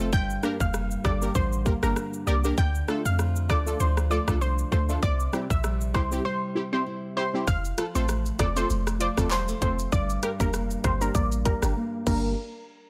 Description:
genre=dancehall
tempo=98 BPM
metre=4/4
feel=swing 56% on 16ths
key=G dorian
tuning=A4 = 439 Hz
part: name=synth brass stab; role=accompaniment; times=0.0-12.4 s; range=G3 to C5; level=-33 LUFS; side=equal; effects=chorus, phaser, sidechain pumping, low-pass filter
part: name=nylon-string guitar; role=arpeggios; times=0.0-12.3 s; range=F2 to E4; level=-36 LUFS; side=equal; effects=low-pass filter
part: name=warm 808-style bass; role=bass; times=0.0-12.4 s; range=E1 to F2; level=-30 LUFS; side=equal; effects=none
part: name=analog pluck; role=melody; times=0.1-12.4 s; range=Bb4 to G5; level=-34 LUFS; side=equal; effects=chorus, low-pass filter
part: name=island pop drum kit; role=drums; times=0.1-12.2 s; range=crash cymbal, handclaps, hi-hat, kick drum, rim click, shaker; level=-30 LUFS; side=equal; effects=none
part: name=maracas and timbales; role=percussion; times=7.5-12.4 s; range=none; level=-43 LUFS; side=equal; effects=none
room=little or no reverb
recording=none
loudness=-26 LUFS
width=mono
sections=0.0-7.5 A section; 7.5-12.4 B section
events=break 6.3-7.5; filter sweep 7.5-12.4; drums muted 11.8-12.4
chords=0.1 Gm; 2.6 Dm; 5.0 C; 7.5 F; 9.9 Gm; 12.4 N.C.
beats=| 0.13 0.74 1.35 1.97 | 2.58 3.19 3.80 4.41 | 5.03 5.64 6.25 6.86 | 7.47 8.09 8.70 9.31 | 9.92 10.54 11.15 11.76

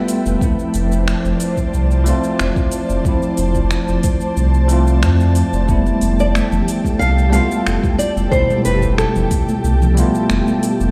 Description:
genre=sunset chillout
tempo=91 BPM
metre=4/4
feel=straight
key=F lydian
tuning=A4 = 440 Hz
part: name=bell-like tine electric piano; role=accompaniment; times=0.0-10.9 s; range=B2 to F4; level=-22 LUFS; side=equal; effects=digital delay
part: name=ethereal airy pad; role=sustained chords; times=0.0-10.9 s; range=F3 to A5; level=-27 LUFS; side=equal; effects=ensemble chorus, built-in reverb
part: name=smooth R&B drum kit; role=drums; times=0.1-10.9 s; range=finger snaps, hi-hat, shaker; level=-29 LUFS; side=equal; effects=none
part: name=round analog bass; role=bass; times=0.3-10.9 s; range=F1 to F2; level=-18 LUFS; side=equal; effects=none
part: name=electronic kick drum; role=drums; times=0.4-9.4 s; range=none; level=-21 LUFS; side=equal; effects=none
part: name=congas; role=percussion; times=5.9-10.6 s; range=none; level=-28 LUFS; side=equal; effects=none
part: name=nylon-string guitar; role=melody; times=6.2-9.6 s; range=A4 to F5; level=-23 LUFS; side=equal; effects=digital delay
room=light reverb, digital ambience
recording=played on a big sound system in a bare room, large studio reverb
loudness=-16 LUFS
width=mono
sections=0.0-10.9 A section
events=none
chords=0.4 Dm7/F; 5.7 Fmaj9#11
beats=| 0.41 1.07 1.73 2.39 | 3.05 3.71 4.37 5.03 | 5.69 6.35 7.01 7.67 | 8.32 8.98 9.64 10.30

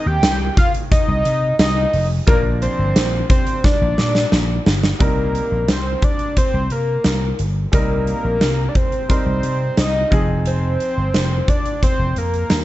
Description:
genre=1980s-style pop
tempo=88 BPM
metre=4/4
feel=straight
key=C minor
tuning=A4 = 439 Hz
part: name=fat analog lead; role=melody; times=0.0-12.6 s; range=Bb4 to G5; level=-21 LUFS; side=equal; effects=none
part: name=bright baby grand piano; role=accompaniment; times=0.0-12.6 s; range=Eb3 to Bb4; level=-29 LUFS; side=right 1 dB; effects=none
part: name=vintage slap bass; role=bass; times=0.1-12.6 s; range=F1 to C3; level=-20 LUFS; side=equal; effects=none
part: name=huge arena drum kit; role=drums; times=0.2-12.6 s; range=hi-hat, kick drum, snare drum, tambourine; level=-18 LUFS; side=equal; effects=none
room=moderate studio reverb, RT60 0.6 s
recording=dark, warm production, nothing above 8.0 kHz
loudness=-15 LUFS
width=side -15 dB against mid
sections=0.0-5.0 A section; 5.0-12.6 B section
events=drum fill 3.6-5.0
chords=0.0 Ab/C; 2.3 Bb; 5.0 Cm7; 10.1 Fm7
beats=0.23 0.91 1.60 | 2.28 2.96 3.64 4.32 | 5.00 5.69 6.37 7.05 | 7.73 8.41 9.10 9.78 | 10.46 11.14 11.82 12.51

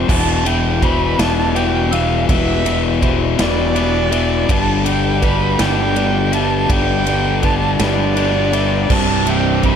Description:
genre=post-rock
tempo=54 BPM (dotted quarters)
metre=6/8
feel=straight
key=unclear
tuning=A4 = 437 Hz
part: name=muted violin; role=melody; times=0.0-9.8 s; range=D5 to B5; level=-21 LUFS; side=right 6 dB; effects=digital delay
part: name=hand-pumped harmonium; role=sustained chords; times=0.0-9.8 s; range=B2 to C5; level=-30 LUFS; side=right 6 dB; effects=none
part: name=felt-muted upright piano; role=arpeggios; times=0.0-9.8 s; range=B4 to E6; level=-30 LUFS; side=right 11 dB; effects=digital delay
part: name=twangy electric guitar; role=arpeggios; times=0.0-9.8 s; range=C2 to D4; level=-26 LUFS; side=equal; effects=none
part: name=crunchy overdriven guitar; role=riff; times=0.0-9.8 s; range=C2 to G3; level=-18 LUFS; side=left 10 dB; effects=none
part: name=fuzz fingered electric bass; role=bass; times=0.0-9.8 s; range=C1 to G1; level=-20 LUFS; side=right 1 dB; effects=overdrive
part: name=big rock drum kit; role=drums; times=0.1-9.8 s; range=crash cymbal, kick drum, ride cymbal, snare drum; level=-21 LUFS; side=right 1 dB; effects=none
part: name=crunchy overdriven guitar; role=riff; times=8.9-9.8 s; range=C2 to C3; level=-19 LUFS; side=right 15 dB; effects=none
room=little or no reverb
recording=dark, warm production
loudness=-13 LUFS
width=side -8 dB against mid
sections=0.0-9.8 A section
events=none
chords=0.1 Em; 4.5 G; 8.9 C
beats=| 0.09 1.19 | 2.29 3.39 | 4.49 5.59 | 6.70 7.80 | 8.90

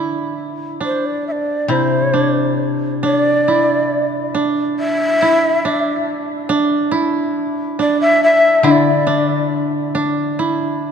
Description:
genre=japanese traditional, Japanese chamber music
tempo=69 BPM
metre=4/4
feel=rubato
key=unclear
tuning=A4 = 441 Hz
part: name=koto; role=second line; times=0.0-10.9 s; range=D4 to E4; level=-18 LUFS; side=right 3 dB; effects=none
part: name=koto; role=accompaniment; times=0.0-10.9 s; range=C3 to D3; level=-20 LUFS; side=left 7 dB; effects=none
part: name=breathy mellow shakuhachi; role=melody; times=0.9-9.5 s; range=C5 to E5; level=-16 LUFS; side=left 1 dB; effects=none
room=wet cathedral reverb, RT60 4.6 s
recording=dark, warm production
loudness=-14 LUFS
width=side -7 dB against mid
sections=0.0-10.9 A section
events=none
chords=none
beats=0.35 1.25 2.14 | 3.03 3.91 4.78 5.65 | 6.51 7.36 8.22 9.08 | 9.96 10.83

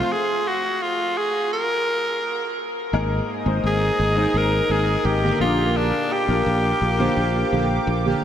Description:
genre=pop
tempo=85 BPM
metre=4/4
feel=straight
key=unclear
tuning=A4 = 442 Hz
part: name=raspy tenor saxophone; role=melody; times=0.0-8.2 s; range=D4 to Bb4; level=-22 LUFS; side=equal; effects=analog delay
part: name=warm grand piano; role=accompaniment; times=0.0-8.2 s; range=Ab2 to F5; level=-26 LUFS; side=left 3 dB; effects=analog chorus
part: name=warm analog pad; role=sustained chords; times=0.0-8.2 s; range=Bb4 to Eb6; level=-30 LUFS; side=equal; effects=chorus
part: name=analog synth brass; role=stabs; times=0.0-8.2 s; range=D3 to Bb4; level=-29 LUFS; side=right 2 dB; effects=chorus, analog delay
part: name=sustaining fretless electric bass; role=bass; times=2.9-8.1 s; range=Ab1 to Bb1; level=-23 LUFS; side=equal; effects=none
room=wet huge ambient reverb, RT60 7.2 s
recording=dreamy mix soaked in reverb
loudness=-19 LUFS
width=side -9 dB against mid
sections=0.0-2.9 A section; 2.9-8.2 A section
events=stop 0.1-2.9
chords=0.1 N.C.; 2.9 Absus2; 5.4 Bb6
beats=| 0.11 0.81 1.52 2.22 | 2.93 3.64 4.34 5.05 | 5.75 6.46 7.17 7.87

